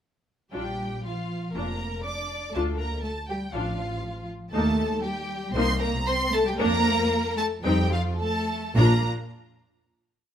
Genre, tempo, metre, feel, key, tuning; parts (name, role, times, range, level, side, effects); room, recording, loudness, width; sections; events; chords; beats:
quick classical-period movement for string orchestra; 104-122 BPM; 4/4; rubato; Bb major; A4 = 439 Hz
rich chamber violin section; melody; 0.5-9.1 s; F5 to D6; -31 LUFS; right 2 dB
rich chamber violin section; second line; 0.5-9.1 s; F4 to Bb5; -31 LUFS; left 2 dB
rich symphonic viola section; accompaniment; 0.5-9.1 s; Bb3 to F4; -28 LUFS; left 2 dB
rich chamber double bass section; bass; 0.5-9.1 s; F1 to F2; -28 LUFS; right 1 dB
warm symphonic cello section; bass; 0.5-9.1 s; F3 to D4; -30 LUFS; equal
light reverb; close, detailed microphones; -24 LUFS; side -9 dB against mid
0.5-8.8 A section; 8.8-10.3 final chord
slowing down 3.5-8.8
0.5 Bb; 2.5 Dm; 4.5 Eb; 5.5 Cm7; 6.6 Bb/F; 7.6 F7; 8.8 Bb
| 0.54 1.05 1.55 2.05 | 2.54 3.04 3.53 4.03 | 4.53 5.03 5.54 6.07 | 6.59 7.11 7.64 8.20 | 8.76